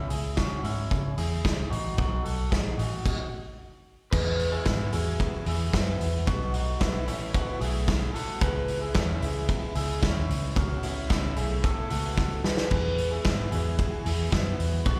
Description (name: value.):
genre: jangly indie pop.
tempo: 112 BPM.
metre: 4/4.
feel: straight.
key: E major.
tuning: A4 = 444 Hz.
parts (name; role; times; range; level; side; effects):
electric guitar through a small old amp; arpeggios; 0.0-15.0 s; B3 to B4; -35 LUFS; equal; analog delay.
vintage muted fingered electric bass; bass; 0.0-15.0 s; A1 to C#3; -32 LUFS; equal; none.
loose indie drum kit; drums; 0.1-15.0 s; crash cymbal, hi-hat, kick drum, ride cymbal, snare drum; -31 LUFS; equal; none.
lush unison pad; sustained chords; 4.6-15.0 s; C#3 to G#4; -42 LUFS; equal; chorus, phaser.
room: small room ambience.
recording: live gig heard through the venue's PA, recital hall reverb.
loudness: -28 LUFS.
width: mono.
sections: 0.0-4.1 A section; 4.1-15.0 B section.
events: stop 3.1-4.1; drum fill 12.2-12.7.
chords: 0.0 C#m; 2.0 B; 4.1 Eadd9; 6.3 B7sus4; 8.4 C#m7; 10.6 Aadd9; 12.7 Eadd9.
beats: 0.37 0.91 1.44 | 1.98 2.52 3.05 3.59 | 4.13 4.66 5.20 5.74 | 6.28 6.81 7.35 7.89 | 8.42 8.96 9.50 10.03 | 10.57 11.11 11.64 12.18 | 12.72 13.25 13.79 14.33 | 14.86.